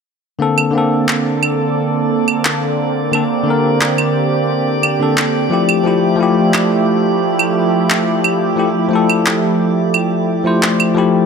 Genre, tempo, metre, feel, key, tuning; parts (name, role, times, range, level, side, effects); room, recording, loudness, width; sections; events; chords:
sunset chillout; 88 BPM; 4/4; straight; Bb lydian; A4 = 440 Hz
bell-like tine electric piano; accompaniment; 0.4-11.3 s; D3 to C5; -16 LUFS; moving between left 6 dB and right 5 dB; auto-pan, digital delay
lush unison pad; sustained chords; 0.9-11.3 s; D3 to A4; -17 LUFS; equal; chorus
drifting glass-harmonics texture; texture; 0.8-11.3 s; D5 to D6; -25 LUFS; right 4 dB; chorus, built-in reverb
electronic claves and handclaps; drums; 0.6-10.9 s; -17 LUFS; right 2 dB; small room ambience
moderate lush hall reverb, RT60 1.8 s; -12 LUFS; side -6 dB against mid
0.4-11.3 A section
0.4 Bbmaj9; 5.5 Fmaj9